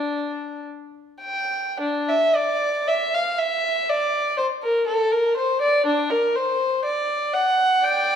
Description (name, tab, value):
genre	classical, baroque-style suite movement for unaccompanied violin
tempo	50-62 BPM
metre	4/4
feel	rubato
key	unclear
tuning	A4 = 440 Hz
part	dark violin	solo	0.0-8.2 s	D4 to G5	-20 LUFS	equal	none
room	wet recital hall reverb, RT60 1.4 s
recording	minimal, uncompressed stereo recording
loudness	-19 LUFS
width	side -8 dB against mid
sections	0.0-1.8 A section; 1.8-8.2 B section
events	none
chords	none